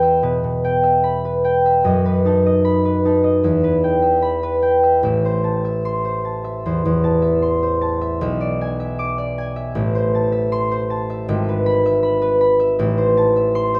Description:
classical, solo harp piece; 76 BPM; 4/4; uneven beats, rubato; E minor; A4 = 439 Hz
concert harp; solo; 0.0-13.8 s; G#1 to D6; -18 LUFS; equal
wet recital hall reverb, RT60 1.6 s; heard from further back in the room; -18 LUFS; mono
0.0-13.8 A section
0.0 Em; 1.9 B7/F#; 3.5 Em; 5.1 Am; 8.2 E7/B; 9.8 Am; 11.3 E/G#; 12.8 Am
0.23 1.05 | 1.85 2.66 3.46 4.25 | 5.05 5.88 6.66 7.43 | 8.21 8.99 9.76 10.52 | 11.29 12.04 12.79 13.56

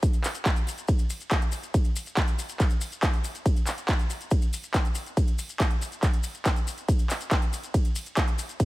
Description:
trance; 140 BPM; 4/4; straight
big-room dance drum kit; drums; 0.0-8.7 s; handclaps, hi-hat, ride cymbal; -32 LUFS; right 1 dB; sidechain pumping on hats, studio reverb, sidechain pumping on cymbals
electronic kick drum; drums; 0.0-8.7 s; -24 LUFS; equal; studio reverb
maracas; percussion; 0.0-8.7 s; -38 LUFS; left 5 dB
little or no reverb; -24 LUFS; side -19 dB against mid
0.0-8.7 A section
| 0.03 0.46 0.88 1.31 | 1.74 2.17 2.60 3.03 | 3.46 3.88 4.31 4.74 | 5.17 5.60 6.03 6.46 | 6.88 7.31 7.74 8.17 | 8.60

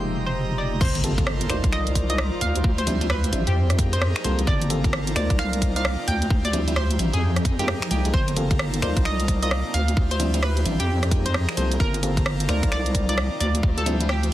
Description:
UK garage, two-step garage; 131 BPM; 4/4; swing 62% on 16ths; G minor; A4 = 440 Hz
hollow square pluck; melody; 0.0-14.3 s; G4 to G5; -30 LUFS; right 1 dB; chorus, digital delay
airy breathy pad; sustained chords; 0.0-14.3 s; C4 to Bb5; -34 LUFS; right 1 dB; chorus, sidechain pumping
FM electric piano; stabs; 0.0-14.1 s; F3 to D5; -30 LUFS; left 1 dB; chorus, low-pass filter, digital delay
deep soft wobble bass; bass; 0.0-14.3 s; F1 to F2; -23 LUFS; equal; chorus
granular cloud pad; texture; 0.0-14.3 s; F3 to F5; -34 LUFS; equal; built-in reverb, sidechain pumping
electronic kick drum; drums; 0.8-13.7 s; -22 LUFS; equal; overdrive
garage drum kit; drums; 0.8-14.3 s; crash cymbal, finger snaps, hi-hat, rim click; -27 LUFS; right 1 dB; overdrive
impact; sound effects; 0.8-2.6 s; -31 LUFS; equal
little or no reverb; dense, heavily limited modern master, vinyl crackle; -20 LUFS; side -14 dB against mid
0.8-14.3 A section
drop 0.8-14.3; impact 0.8-2.6
0.0 Fm11; 0.8 Gm11; 1.7 Cm11; 2.4 Dm11; 3.6 Fm11; 4.5 Gm11; 5.4 Cm11; 6.1 Dm11; 7.2 Fm11; 8.1 Gm11; 9.1 Cm11; 9.7 Dm11; 10.9 Fm11; 11.8 Gm11; 12.7 Cm11; 13.4 Dm11
0.35 | 0.81 1.27 1.73 2.18 | 2.64 3.10 3.56 4.01 | 4.47 4.93 5.39 5.85 | 6.30 6.76 7.22 7.68 | 8.14 8.60 9.05 9.51 | 9.97 10.43 10.88 11.34 | 11.80 12.26 12.72 13.18 | 13.63 14.09

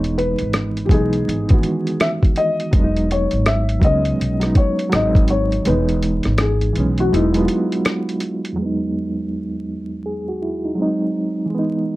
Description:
lo-fi hip hop; 82 BPM; 4/4; swing 62% on 16ths; E major; A4 = 441 Hz
felt-muted upright piano; melody; 0.0-8.2 s; E4 to E5; -22 LUFS; left 3 dB; low-pass filter, plate reverb
reed electric piano; accompaniment; 0.0-12.0 s; E2 to G#4; -20 LUFS; right 2 dB; fast tremolo, low-pass filter
upright bass; bass; 0.0-7.4 s; E1 to C#2; -21 LUFS; equal
lo-fi sampler-style drum kit; drums; 0.0-8.6 s; hi-hat, kick drum, rim click; -17 LUFS; equal; vintage 12-bit sampler grit
light reverb; dark, warm production, vinyl crackle; -16 LUFS; side -18 dB against mid
0.0-8.6 A section; 8.6-12.0 B section
kick muted 5.7-8.6; filter sweep on reed electric piano 8.6-12.0
0.0 Emaj9; 2.7 Emaj7; 4.9 G#7; 5.7 C#m7/E; 7.1 Emaj7; 10.8 G#7
0.54 1.27 2.00 | 2.73 3.46 4.19 4.92 | 5.66 6.39 7.12 7.85 | 8.58 9.32 10.05 10.78 | 11.51

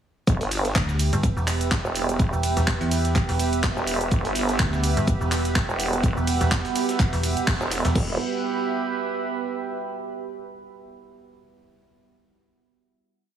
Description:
bass house; 125 BPM; 4/4; swing 56% on 16ths; E minor; A4 = 440 Hz
deep dark ambient pad; sustained chords; 1.0-8.2 s; B3 to G5; -29 LUFS; right 4 dB; chorus, built-in reverb, sidechain pumping
vowel-sweep wobble bass; bass; 0.3-8.2 s; E1 to G1; -26 LUFS; equal; chorus, tube saturation, sidechain pumping
dusty soul sampler-style drum kit; drums; 0.3-7.9 s; hi-hat, shaker, snare drum; -38 LUFS; right 1 dB
electronic kick drum; drums; 0.3-8.1 s; -23 LUFS; equal
house drum kit; drums; 0.3-8.1 s; crash cymbal, handclaps, hi-hat, ride cymbal, shaker; -29 LUFS; right 1 dB
warbly tape-like pad; texture; 0.5-9.8 s; G4 to B5; -30 LUFS; right 4 dB; chorus, built-in reverb, sidechain pumping
metallic FM bass; bass; 0.8-7.9 s; E1 to E2; -24 LUFS; equal; overdrive, sidechain pumping
light reverb, digital ambience; heavily compressed radio sound, multiband compression, small room ambience; -21 LUFS; side -9 dB against mid
0.3-8.0 drop; 8.0-9.9 final chord
drop 0.3-8.0; band accent 7.5
0.3 Em
| 0.28 0.76 1.24 1.72 | 2.19 2.67 3.15 3.63 | 4.12 4.59 5.08 5.55 | 6.04 6.51 7.00 7.47 | 7.96 8.44 8.91 9.39

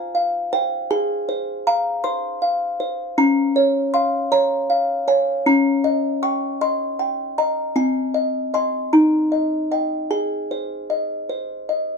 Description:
classical, lullaby for music box; 52 BPM (dotted quarters); 6/8; straight; Ab major; A4 = 439 Hz
music box; solo; 0.0-12.0 s; C4 to Db6; -18 LUFS; equal
moderate studio reverb, RT60 0.6 s; dark, warm production; -18 LUFS; side -5 dB against mid
0.0-12.0 A section
0.0 Fm; 0.9 Fm/Ab; 3.2 Bbm/Db; 5.5 Eb7/Db; 7.8 Ab/C; 8.9 Eb; 10.1 Ab
| 0.90 2.04 | 3.18 4.32 | 5.46 6.61 | 7.77 8.94 | 10.11 11.30

